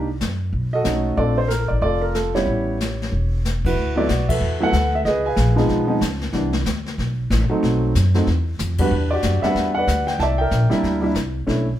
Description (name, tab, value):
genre	jazz piano trio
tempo	186 BPM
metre	4/4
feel	swing 63% on 8ths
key	unclear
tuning	A4 = 440 Hz
part	warm grand piano	melody	0.0-11.7 s	E3 to A5	-20 LUFS	right 1 dB	none
part	upright bass	bass	0.0-11.8 s	E1 to Gb2	-21 LUFS	equal	none
part	jazz brush drum kit	drums	0.2-11.8 s	brushed snare drum, crash cymbal, hi-hat, kick drum, ride cymbal, snare drum, toms	-27 LUFS	left 2 dB	none
room	moderate studio reverb, RT60 0.8 s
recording	heard from further back in the room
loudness	-18 LUFS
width	side -12 dB against mid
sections	0.0-3.8 A section; 3.8-11.8 B section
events	band accent 3.6, 4.2, 8.7; drum fill 8.6-8.9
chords	0.0 N.C.; 0.5 B9; 1.2 Bbmaj7; 2.5 A7; 3.8 D69; 5.0 C#9; 6.3 Cmaj7sus2; 7.6 B7b9; 8.9 Em9; 10.2 C9